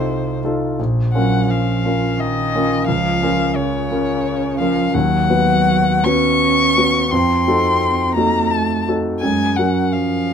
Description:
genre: classical, slow romantic movement for piano trio.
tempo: 85 BPM.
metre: 3/4.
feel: rubato.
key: Bb minor.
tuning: A4 = 440 Hz.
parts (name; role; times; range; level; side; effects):
muted violin; melody; 0.0-10.3 s; C5 to Db6; -19 LUFS; left 4 dB; none.
muted cello; second line; 0.0-10.3 s; C3 to Db4; -21 LUFS; right 8 dB; none.
warm concert grand piano; accompaniment; 0.0-10.3 s; Bb1 to B4; -18 LUFS; left 1 dB; none.
room: light reverb.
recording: close, detailed microphones.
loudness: -15 LUFS.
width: side -7 dB against mid.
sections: 0.0-10.3 A section.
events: none.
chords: 0.0 F7/C; 0.8 Bbm; 2.9 Bbm/Db; 4.9 B/D#; 7.1 F7b9; 9.2 Gb.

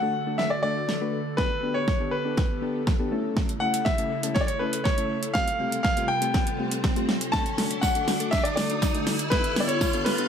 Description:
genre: dance-pop.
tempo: 121 BPM.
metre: 4/4.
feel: straight.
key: D major.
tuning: A4 = 440 Hz.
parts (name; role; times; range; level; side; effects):
clear concert grand piano; melody; 0.0-10.3 s; B4 to A5; -27 LUFS; left 1 dB; ping-pong delay.
soft electric-piano-like synth keys; accompaniment; 0.0-10.3 s; A3 to B4; -32 LUFS; left 3 dB; chorus, sidechain pumping.
airy breathy pad; sustained chords; 0.0-10.3 s; C3 to A4; -34 LUFS; right 2 dB; chorus, sidechain pumping.
riser; sound effects; 2.1-10.3 s; none; -33 LUFS; equal; none.
pop drum kit; drums; 0.4-10.3 s; hi-hat, kick drum, snare drum; -26 LUFS; right 1 dB; overdrive.
tambourine; percussion; 7.3-10.2 s; none; -40 LUFS; right 10 dB; none.
room: light reverb, digital ambience.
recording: none.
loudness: -23 LUFS.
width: side -8 dB against mid.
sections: 0.0-10.3 A section.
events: build-up 0.0-10.3; drum fill 0.0-10.3; riser 2.1-10.3.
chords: 0.0 D; 1.4 Gadd9; 3.1 A; 5.3 Fadd9; 7.3 D; 9.3 Gadd9.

